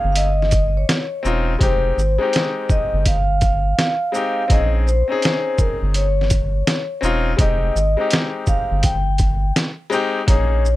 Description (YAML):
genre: hip hop, jazz-hop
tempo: 83 BPM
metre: 4/4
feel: swing 66% on 16ths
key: F minor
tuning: A4 = 440 Hz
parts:
  - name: vibraphone with soft mallets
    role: melody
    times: 0.0-10.8 s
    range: Bb4 to G5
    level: -22 LUFS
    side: left 1 dB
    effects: plate reverb
  - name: bright concert grand piano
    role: accompaniment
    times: 0.0-10.7 s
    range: Ab3 to Ab4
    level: -23 LUFS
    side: left 4 dB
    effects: plate reverb
  - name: round analog bass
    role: bass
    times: 0.0-10.8 s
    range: E1 to Bb1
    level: -19 LUFS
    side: equal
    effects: none
  - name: trip hop sampler-style drum kit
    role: drums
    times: 0.2-10.8 s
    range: hi-hat, kick drum, shaker, snare drum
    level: -19 LUFS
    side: equal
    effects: none
room: little or no reverb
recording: none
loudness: -16 LUFS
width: side -16 dB against mid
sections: 0.0-10.8 A section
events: none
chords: 0.0 Bbm11; 1.6 Fm9; 4.5 Bbm11; 7.4 Fm9 (rootless)